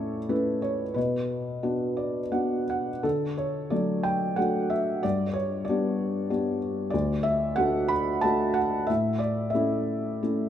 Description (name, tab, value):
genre	classical, lyrical solo piano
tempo	83-96 BPM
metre	3/4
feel	rubato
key	B minor, D major from 3.0 s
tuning	A4 = 440 Hz
part	felt-muted upright piano	solo	0.0-10.5 s	D2 to B5	-24 LUFS	equal	none
room	wet recital hall reverb, RT60 1.6 s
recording	minimal, uncompressed stereo recording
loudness	-24 LUFS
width	side -10 dB against mid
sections	0.0-3.0 A section; 3.0-10.5 B section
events	felt piano fill 1.6-3.0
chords	0.0 A; 1.0 Bm; 3.0 D; 5.0 G; 6.9 D; 8.9 A